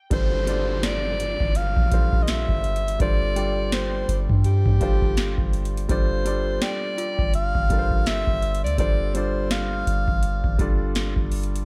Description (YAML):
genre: contemporary R&B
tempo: 83 BPM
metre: 4/4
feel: swing 58% on 16ths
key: unclear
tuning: A4 = 439 Hz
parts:
  - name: warm alto saxophone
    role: melody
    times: 0.1-11.0 s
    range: G4 to F5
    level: -30 LUFS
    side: equal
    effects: digital delay
  - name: warm grand piano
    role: accompaniment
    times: 0.1-11.7 s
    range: G3 to D5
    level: -32 LUFS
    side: equal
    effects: none
  - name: soft 808-style bass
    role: bass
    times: 0.1-11.7 s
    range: G1 to G2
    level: -27 LUFS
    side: equal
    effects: none
  - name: booming analog drum machine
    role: drums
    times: 0.1-11.7 s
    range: hi-hat, kick drum, snare drum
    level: -26 LUFS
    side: equal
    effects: none
  - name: downlifter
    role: sound effects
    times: 0.1-5.9 s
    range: none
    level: -40 LUFS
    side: equal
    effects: none
  - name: synth chime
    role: texture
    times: 0.8-10.4 s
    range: F4 to E6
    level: -43 LUFS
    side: equal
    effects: ensemble chorus, digital delay
room: digital ambience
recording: dark, warm production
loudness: -23 LUFS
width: mono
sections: 0.1-11.7 A section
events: none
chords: 0.1 G9sus4